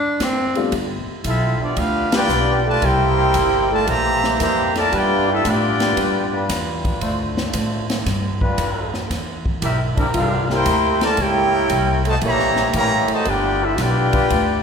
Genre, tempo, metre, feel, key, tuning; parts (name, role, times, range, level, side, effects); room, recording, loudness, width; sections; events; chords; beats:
jazz, big band swing; 115 BPM; 4/4; swing 68% on 8ths; A4 = 436 Hz
warm tenor saxophone; melody; 0.0-0.7 s; C4 to D4; -21 LUFS; equal
swinging big-band drum kit; drums; 0.2-14.5 s; hi-hat, kick drum, ride cymbal, snare drum; -25 LUFS; equal
clear concert grand piano; accompaniment; 0.6-0.7 s; G3 to F4; -24 LUFS; left 6 dB
upright bass; bass; 0.7-14.6 s; G1 to A2; -23 LUFS; equal
clear trombone section; second line; 1.2-14.6 s; E3 to G4; -22 LUFS; right 1 dB
warm trumpet section; melody; 1.3-14.6 s; Bb3 to Bb5; -19 LUFS; left 1 dB
clear trombone section; sustained chords; 2.1-14.6 s; G3 to C5; -26 LUFS; left 2 dB
wet scoring stage reverb, RT60 1.5 s; recorded in a church or concert hall; -16 LUFS; side -6 dB against mid
0.7-14.6 A section
break 0.0-0.7; band accent 2.0
0.0 D5; 0.7 G7; 2.8 C7; 4.9 G7; 7.0 Dm7; 8.1 G7; 9.1 C7; 11.2 C#dim7; 13.3 G7
0.21 | 0.73 1.26 1.78 2.30 | 2.83 3.35 3.87 4.40 | 4.92 5.44 5.96 6.49 | 7.01 7.53 8.05 8.57 | 9.10 9.62 10.14 10.66 | 11.18 11.70 12.22 12.74 | 13.26 13.78 14.30